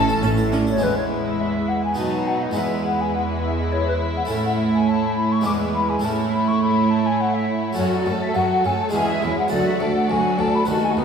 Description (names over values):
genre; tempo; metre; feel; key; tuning
classical, baroque-style concerto movement with solo episodes; 103 BPM; 3/4; straight; E major; A4 = 440 Hz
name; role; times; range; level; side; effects
rich chamber violin section; melody; 0.0-11.0 s; A4 to A5; -32 LUFS; left 5 dB; none
wooden flute; melody; 0.0-10.9 s; B4 to D6; -24 LUFS; left 3 dB; none
rich studio violin section; second line; 0.0-11.0 s; D#4 to A4; -28 LUFS; left 3 dB; none
harpsichord; accompaniment; 0.0-11.0 s; D2 to B4; -27 LUFS; equal; none
rich studio double bass section; bass; 0.0-0.7 s; A1; -28 LUFS; right 2 dB; none
rich symphonic cello section; bass; 0.0-11.0 s; D2 to B2; -26 LUFS; right 3 dB; none
rich symphonic viola section; accompaniment; 0.2-11.0 s; E3 to C#4; -24 LUFS; right 3 dB; none
room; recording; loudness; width
wet concert hall reverb, RT60 2.3 s; recorded in a church or concert hall; -18 LUFS; side -6 dB against mid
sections
0.8-11.0 A section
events
none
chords
0.0 A; 0.8 E; 2.0 B7; 2.6 E; 4.3 A; 5.5 E; 6.0 A; 7.8 F#m; 8.9 C#m/E; 9.5 D